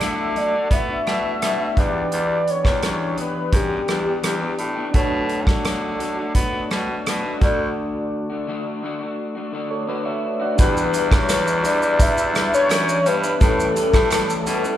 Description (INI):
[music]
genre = indie pop, bedroom pop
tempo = 85 BPM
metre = 4/4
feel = straight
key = E dorian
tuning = A4 = 444 Hz
[part]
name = warm velvety synth lead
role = melody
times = 0.0-4.6, 10.6-14.8 s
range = G4 to E5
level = -22 LUFS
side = left 2 dB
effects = chorus
[part]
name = electric guitar through a small old amp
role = accompaniment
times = 0.0-14.8 s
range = A2 to B4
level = -26 LUFS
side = left 2 dB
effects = vibrato effect
[part]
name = soft electric-piano-like synth keys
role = accompaniment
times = 0.0-14.8 s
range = C#4 to F#5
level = -29 LUFS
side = right 2 dB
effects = chorus, phaser
[part]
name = raspy baritone saxophone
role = bass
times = 0.0-14.7 s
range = D2 to B3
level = -24 LUFS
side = equal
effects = none
[part]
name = loose indie drum kit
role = drums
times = 0.0-14.8 s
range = hi-hat, kick drum, rim click, shaker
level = -20 LUFS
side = equal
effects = none
[part]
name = group handclap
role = percussion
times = 11.3-14.3 s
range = none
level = barely audible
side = none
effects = none
[sound]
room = wet recital hall reverb, RT60 1.5 s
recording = recorded in a church or concert hall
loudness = -18 LUFS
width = side -12 dB against mid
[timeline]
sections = 0.0-10.6 A section; 10.6-14.8 B section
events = break 7.8-10.6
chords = 0.0 Bm7; 1.8 Em7; 4.9 Bm7; 7.4 D; 10.6 Em7; 13.4 A9